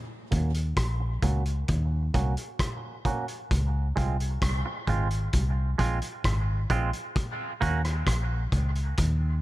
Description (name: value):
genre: dub reggae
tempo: 66 BPM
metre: 4/4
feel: straight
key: Eb dorian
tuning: A4 = 439 Hz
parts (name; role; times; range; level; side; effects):
- semi-hollow electric guitar; accompaniment; 0.3-7.8 s; Ab3 to Gb4; -34 LUFS; right 5 dB; warbly pitch drift, low-pass filter, dub echo
- vintage muted fingered electric bass; bass; 0.3-9.4 s; Ab1 to Eb2; -26 LUFS; equal; none
- vintage drum kit; drums; 0.3-9.2 s; hi-hat, kick drum, rim click; -30 LUFS; equal; none
room: studio ambience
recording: echo-heavy mix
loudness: -25 LUFS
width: side -17 dB against mid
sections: 0.0-9.4 A section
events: filter sweep on clean electric guitar 0.0-9.4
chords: 0.0 Ebm7; 3.5 Dbmaj7 (rootless); 7.2 Eb7(no3)